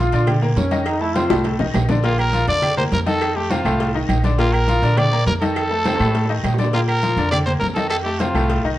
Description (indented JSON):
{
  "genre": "latin, salsa",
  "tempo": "204 BPM",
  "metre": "4/4",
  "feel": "straight",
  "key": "Bb major",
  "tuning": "A4 = 440 Hz",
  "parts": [
    { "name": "bright trombone", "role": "melody", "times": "0.0-1.5 s", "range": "Db4 to F4", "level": "-23 LUFS", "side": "right 1 dB", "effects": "plate reverb" },
    { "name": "bright concert grand piano", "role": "accompaniment", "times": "0.0-8.8 s", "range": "A2 to Bb5", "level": "-23 LUFS", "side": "left 3 dB", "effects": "none" },
    { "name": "upright bass", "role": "bass", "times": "0.0-8.8 s", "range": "Bb1 to Bb2", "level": "-21 LUFS", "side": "right 1 dB", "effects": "none" },
    { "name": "congas", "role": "percussion", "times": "0.1-8.8 s", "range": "none", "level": "-26 LUFS", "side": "left 1 dB", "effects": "none" },
    { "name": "cowbell and bongos", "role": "percussion", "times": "0.1-8.6 s", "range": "none", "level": "-29 LUFS", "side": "left 3 dB", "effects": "none" },
    { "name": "guiro", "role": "percussion", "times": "0.1-8.8 s", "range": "none", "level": "-38 LUFS", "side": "right 5 dB", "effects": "none" },
    { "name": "agogo bells and timbales", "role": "percussion", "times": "0.3-8.6 s", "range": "none", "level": "-28 LUFS", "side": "right 4 dB", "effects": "none" },
    { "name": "claves", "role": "percussion", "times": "0.3-8.5 s", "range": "none", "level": "-35 LUFS", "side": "right 4 dB", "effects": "none" },
    { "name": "growling trumpet", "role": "melody", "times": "2.0-8.6 s", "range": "F4 to D5", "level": "-21 LUFS", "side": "equal", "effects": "none" }
  ],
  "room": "moderate studio reverb, RT60 0.7 s",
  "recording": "worn, warbling old tape, cassette tape, warbly pitch drift",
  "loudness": "-16 LUFS",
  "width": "side -14 dB against mid",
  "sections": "0.0-2.0 A section; 2.0-8.8 B section",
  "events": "trombone solo 0.0-2.0; drum fill 1.3-2.0, 5.9-6.7",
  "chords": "0.0 Bb; 0.9 F7; 2.0 Bb; 3.2 F7; 4.4 Bb; 5.6 F7; 6.7 Bb; 7.9 F7",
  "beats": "0.28 0.57 | 0.86 1.16 1.45 1.75 | 2.04 2.33 2.63 2.92 | 3.21 3.51 3.80 4.09 | 4.39 4.68 4.98 5.27 | 5.56 5.86 6.15 6.44 | 6.74 7.03 7.32 7.62 | 7.91 8.20 8.50"
}